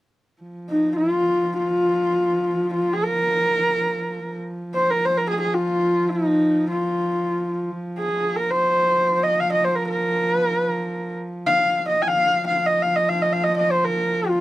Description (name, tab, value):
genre	mongolian traditional, Mongolian folk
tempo	free time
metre	none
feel	none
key	F yu mode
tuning	A4 = 440 Hz
part	warm horsehead fiddle	drone	0.4-14.4 s	F3	-28 LUFS	right 1 dB	none
part	rich horsehead fiddle	melody	0.7-14.4 s	Eb4 to Ab5	-19 LUFS	equal	none
room	light reverb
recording	dark, warm production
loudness	-19 LUFS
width	side -16 dB against mid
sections	0.4-14.4 A section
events	none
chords	none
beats	free time